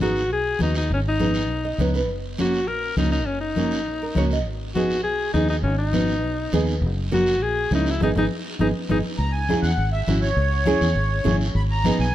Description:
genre	latin, cumbia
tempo	202 BPM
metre	4/4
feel	straight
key	G# minor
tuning	A4 = 440 Hz
part	bright alto saxophone	melody	0.0-9.0 s	C#4 to A#4	-25 LUFS	left 2 dB	none
part	nylon-string guitar	accompaniment	0.0-12.1 s	A#3 to D#5	-27 LUFS	right 4 dB	none
part	fingered electric bass	bass	0.0-12.1 s	F#1 to E2	-24 LUFS	equal	none
part	congas	percussion	0.0-12.0 s	none	-28 LUFS	left 3 dB	none
part	guiro	percussion	0.0-12.1 s	none	-37 LUFS	right 2 dB	none
part	accordion	second line	9.2-12.1 s	C#5 to B5	-25 LUFS	right 1 dB	light tremolo tuning
room	light reverb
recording	dark, warm production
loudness	-20 LUFS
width	side -13 dB against mid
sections	0.0-9.2 A section; 9.2-12.1 B section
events	nylon-string guitar fill 1.5-2.1, 3.9-4.5; band accent 8.0-9.2; drum fill 8.3-9.2; accordion solo 9.2-12.1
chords	0.0 G#m; 2.1 F#; 4.5 G#m; 6.8 F#; 8.0 G#m; 9.2 C#m; 11.6 G#m

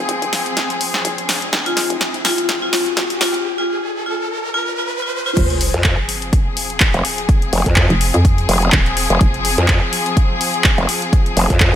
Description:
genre	bass house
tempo	125 BPM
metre	4/4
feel	swing 56% on 16ths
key	F minor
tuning	A4 = 440 Hz
part	rich studio string section	sustained chords	0.0-11.8 s	F3 to Ab4	-22 LUFS	left 2 dB	sidechain pumping, low-pass filter
part	hollow knocking FM bass	bass	0.0-9.6 s	Eb1 to F2	-19 LUFS	equal	tube saturation, sidechain pumping, high-pass filter
part	riser and sub drop	sound effects	0.5-7.3 s	none	-25 LUFS	equal	none
part	house drum kit	drums	0.1-11.7 s	crash cymbal, handclaps, hi-hat, snare drum	-19 LUFS	equal	high-pass filter on snare, studio reverb, high-pass filter on hats, high-pass filter on cymbals
part	vibraphone with hard mallets	melody	1.7-5.4 s	F4	-21 LUFS	left 2 dB	ping-pong delay
part	electronic kick drum	drums	5.4-11.7 s	none	-15 LUFS	equal	studio reverb
part	growl bass	bass	5.7-11.7 s	F1 to F2	-15 LUFS	equal	chorus, sidechain pumping
room	light reverb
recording	high-pass filter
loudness	-14 LUFS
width	side -10 dB against mid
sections	0.0-5.4 A section; 5.4-11.8 B section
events	build-up 0.0-5.4; drum fill 0.0-3.4; filter sweep on string section 0.0-5.4; riser 0.5-5.4; break 3.4-5.4; drop 5.4-11.8; impact 5.4-7.3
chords	0.0 Fm

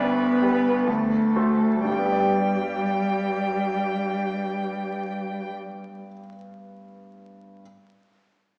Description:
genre	classical, slow romantic movement for piano trio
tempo	59-69 BPM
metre	3/4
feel	rubato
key	G major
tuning	A4 = 440 Hz
part	rich violin	melody	0.0-5.5 s	A4 to G5	-32 LUFS	equal	none
part	rich cello	second line	0.0-5.5 s	G3 to B3	-26 LUFS	equal	none
part	bright grand piano	accompaniment	0.0-7.6 s	D2 to G5	-31 LUFS	equal	none
room	wet recital hall reverb, RT60 1.7 s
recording	heard from further back in the room, vinyl crackle, small speaker sound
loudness	-24 LUFS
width	mono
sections	0.0-1.9 A section; 1.9-4.7 B section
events	slowing down 0.0-1.9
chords	0.0 G/D; 0.9 D7; 1.9 G

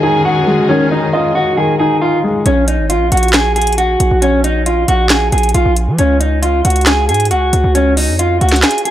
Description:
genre	hip hop, trap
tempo	136 BPM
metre	4/4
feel	half-time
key	Bb minor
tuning	A4 = 440 Hz
part	electric guitar at the edge of break-up	melody	0.0-8.9 s	Db4 to Ab4	-14 LUFS	equal	spring reverb, tape echo
part	dark baby grand piano	accompaniment	0.0-2.5 s	Eb3 to Eb5	-15 LUFS	left 2 dB	none
part	warm studio string section	sustained chords	0.0-2.4 s	Eb3 to Ab4	-21 LUFS	left 1 dB	none
part	distorted 808-style bass	bass	2.5-8.6 s	Ab1 to F3	-14 LUFS	right 1 dB	distortion
part	trap drum kit	drums	2.5-8.9 s	handclaps, hi-hat, snare drum	-15 LUFS	equal	none
room	little or no reverb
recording	dry, gritty hardware recording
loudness	-10 LUFS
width	side -12 dB against mid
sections	0.0-2.5 A section; 2.5-8.9 B section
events	kick muted 8.6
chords	0.0 Dbsus2; 2.5 Bb5; 6.0 Db5

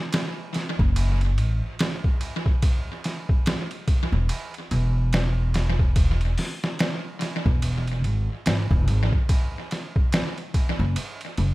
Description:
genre	trip hop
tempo	72 BPM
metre	4/4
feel	swing 60% on 16ths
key	F# minor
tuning	A4 = 438 Hz
part	trip hop sampler-style drum kit	drums	0.1-11.5 s	hi-hat, kick drum, ride cymbal, snare drum	-24 LUFS	equal	overdrive, studio reverb, tape echo
part	upright bass	bass	0.8-11.5 s	E1 to A1	-22 LUFS	equal	none
room	digital ambience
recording	echo-heavy mix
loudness	-21 LUFS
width	side -19 dB against mid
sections	0.0-11.5 A section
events	none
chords	none

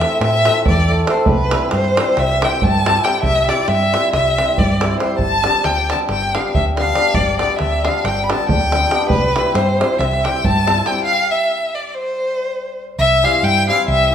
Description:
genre	balkan folk, Balkan wedding band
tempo	276 BPM (eighths)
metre	9/8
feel	straight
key	C major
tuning	A4 = 440 Hz
part	rich violin	melody	0.0-14.1 s	B4 to B5	-17 LUFS	left 1 dB	none
part	hammered dulcimer	accompaniment	0.0-14.1 s	E3 to A4	-22 LUFS	left 2 dB	none
part	hollow-body short-scale fingered electric bass	bass	0.0-14.1 s	G1 to A2	-20 LUFS	equal	none
part	davul	percussion	0.0-10.9 s	none	-21 LUFS	right 2 dB	none
room	wet recital hall reverb, RT60 1.6 s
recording	minimal, uncompressed stereo recording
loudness	-14 LUFS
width	side -8 dB against mid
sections	0.0-13.0 A section; 13.0-14.1 B section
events	stop 11.0-13.0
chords	0.0 Am; 1.3 C; 5.2 G; 9.1 C

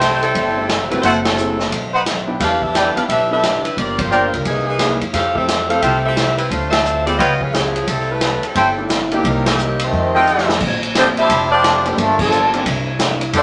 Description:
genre	jazz, big band swing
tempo	175 BPM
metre	4/4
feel	swing 63% on 8ths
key	C major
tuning	A4 = 437 Hz
part	warm saxophone section	melody	0.0-13.4 s	Eb3 to F5	-21 LUFS	equal	none
part	picked steel-string acoustic guitar	accompaniment	0.0-13.4 s	F#2 to A4	-30 LUFS	equal	none
part	bright trumpet section	stabs	0.0-10.6 s	D#4 to G5	-19 LUFS	equal	none
part	upright bass	bass	0.0-13.4 s	F1 to F#2	-26 LUFS	equal	none
part	swinging big-band drum kit	drums	0.0-13.4 s	crash cymbal, hi-hat, kick drum, ride cymbal, snare drum	-23 LUFS	equal	none
part	bright upright piano	accompaniment	0.6-12.7 s	E3 to A4	-26 LUFS	equal	none
part	muted trombone section	second line	9.8-13.4 s	G2 to A4	-19 LUFS	equal	none
room	wet studio reverb, RT60 0.7 s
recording	nothing above 10.9 kHz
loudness	-17 LUFS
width	mono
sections	0.0-10.6 A section; 10.6-13.4 B section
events	band accent 1.2, 3.9, 6.7, 9.4, 12.2; drum fill 10.3-10.6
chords	0.0 C6; 1.0 F#m7b5; 1.7 B7b9; 2.4 Em7; 3.8 Gm7; 4.5 C7alt; 5.1 Fmaj9; 6.5 Dm7; 7.2 Db7#11; 7.9 C6; 9.2 Cm7; 9.9 F9; 10.6 Bb69; 12.0 Gm9; 12.7 C9

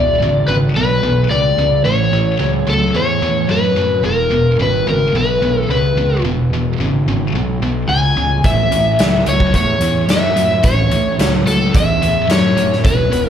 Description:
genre	blues rock power trio and southern rock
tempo	109 BPM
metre	4/4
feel	straight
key	unclear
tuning	A4 = 440 Hz
part	overdriven slide guitar	melody	0.0-13.3 s	A4 to G#5	-16 LUFS	left 2 dB	slapback echo, analog delay
part	tight distorted guitar	riff	0.0-13.3 s	E2 to F#3	-18 LUFS	right 1 dB	distortion
part	fuzz picked electric bass	bass	0.0-13.3 s	E1 to F#2	-19 LUFS	equal	overdrive
part	huge arena drum kit	drums	8.4-13.2 s	hi-hat, kick drum, snare drum	-18 LUFS	equal	none
room	light reverb, studio ambience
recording	live gig heard through the venue's PA, club reverb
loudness	-12 LUFS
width	side -9 dB against mid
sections	0.0-13.3 A section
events	none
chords	0.0 E7; 1.9 A; 4.0 E; 8.4 A

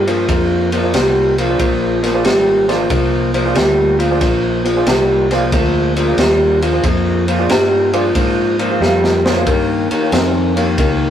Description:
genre	electric blues shuffle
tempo	92 BPM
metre	4/4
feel	swing 67% on 8ths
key	Bb mixolydian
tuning	A4 = 440 Hz
part	electric guitar through a small old amp	riff	0.0-11.1 s	Bb2 to C4	-14 LUFS	left 1 dB	none
part	fingered electric bass	bass	0.0-11.1 s	Ab1 to Ab2	-20 LUFS	equal	none
part	warm baby grand piano	accompaniment	0.1-10.7 s	F4 to F5	-23 LUFS	right 5 dB	none
part	crunchy breakbeat drum kit	drums	0.1-11.0 s	kick drum, ride cymbal, snare drum	-19 LUFS	equal	none
room	moderate studio reverb, RT60 0.6 s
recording	rough rehearsal-room recording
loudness	-12 LUFS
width	side -10 dB against mid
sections	0.0-11.1 A section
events	drum fill 8.8-9.5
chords	0.0 Bb9; 9.5 Eb9

